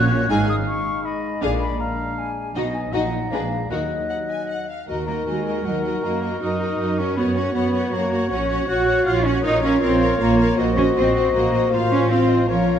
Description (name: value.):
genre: classical, dramatic, fast romantic movement for symphony orchestra.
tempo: 158 BPM.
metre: 3/4.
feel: straight.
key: Eb minor, Bb minor from 9.4 s.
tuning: A4 = 440 Hz.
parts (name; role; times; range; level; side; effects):
warm symphonic violin section; melody; 0.0-12.8 s; Bb4 to Ab5; -32 LUFS; left 4 dB; none.
mellow silver concert flute; second line; 0.0-12.8 s; Eb5 to Gb6; -29 LUFS; left 3 dB; none.
warm oboe; second line; 0.0-12.8 s; Bb4 to Bb5; -32 LUFS; right 1 dB; none.
warm symphonic violin section; second line; 0.0-12.8 s; Gb4 to Db5; -30 LUFS; left 6 dB; none.
warm studio viola section; accompaniment; 0.0-12.8 s; Db4 to Bb4; -28 LUFS; right 3 dB; none.
mellow French horn section; sustained chords; 0.0-12.8 s; F#3 to Db5; -26 LUFS; left 4 dB; none.
rich symphonic cello section; bass; 0.0-12.8 s; Eb2 to Gb4; -23 LUFS; right 2 dB; none.
warm studio double bass section; bass; 0.0-12.8 s; Ab1 to Gb2; -26 LUFS; right 2 dB; none.
clear clarinet; second line; 4.9-12.8 s; F4 to Gb4; -28 LUFS; left 1 dB; none.
room: moderate concert hall reverb, RT60 2.1 s.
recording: dark, warm production.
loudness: -18 LUFS.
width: side -9 dB against mid.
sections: 0.0-4.9 A section; 4.9-12.8 A section.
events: none.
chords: 0.3 Abm; 1.4 Bb7; 2.6 B; 2.9 Ebm/Bb; 3.3 Bb7b9; 3.7 Ebm; 6.0 Ebm/Gb; 7.2 Gb; 8.3 Gb/Bb; 9.4 Bbm; 10.6 Cm7b5/Bb; 11.7 F/A.